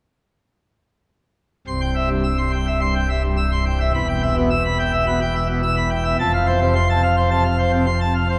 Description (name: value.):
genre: classical, organ toccata.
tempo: 107 BPM.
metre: 4/4.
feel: straight.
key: C major.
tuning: A4 = 440 Hz.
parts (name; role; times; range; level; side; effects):
pipe organ, plenum; solo; 1.7-8.4 s; C1 to E6; -19 LUFS; equal; none.
room: wet cathedral reverb, RT60 5.3 s.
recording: recorded in a church or concert hall.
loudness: -19 LUFS.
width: mono.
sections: 1.7-8.4 A section.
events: none.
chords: 1.7 C; 3.9 Em; 6.2 F.